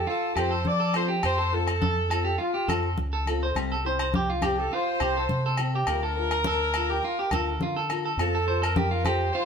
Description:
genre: highlife guitar band.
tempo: 104 BPM.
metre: 4/4.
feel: straight.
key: F major.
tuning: A4 = 441 Hz.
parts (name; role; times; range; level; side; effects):
mellow horn section; melody; 0.0-9.5 s; F4 to D5; -29 LUFS; left 1 dB; none.
clean electric guitar; arpeggios; 0.0-9.5 s; F4 to C5; -28 LUFS; right 2 dB; none.
deep dub fingered electric bass; bass; 0.0-9.3 s; C2 to F3; -29 LUFS; right 1 dB; none.
congas; percussion; 0.1-9.4 s; none; -31 LUFS; left 2 dB; none.
nylon-string guitar; accompaniment; 0.4-9.2 s; G3 to Bb4; -34 LUFS; left 5 dB; none.
agogo bells; percussion; 0.4-9.2 s; none; -34 LUFS; left 2 dB; none.
room: moderate stone room reverb, RT60 1.1 s.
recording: band playing live in one room.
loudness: -23 LUFS.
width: side -6 dB against mid.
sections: 0.0-9.5 A section.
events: none.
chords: 0.0 F; 3.6 C; 5.9 Bb/D; 8.2 F.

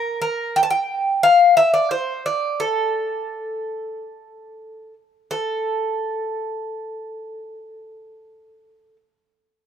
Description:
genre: greek folk.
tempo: 88 BPM.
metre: 4/4.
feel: straight.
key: A phrygian.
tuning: A4 = 440 Hz.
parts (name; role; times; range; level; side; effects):
Greek bouzouki; solo; 0.0-9.0 s; A4 to A5; -19 LUFS; left 1 dB; none.
room: light reverb.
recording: rough home demo mix.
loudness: -18 LUFS.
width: side -8 dB against mid.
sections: 0.0-5.3 A section; 5.3-8.0 B section.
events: none.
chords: none.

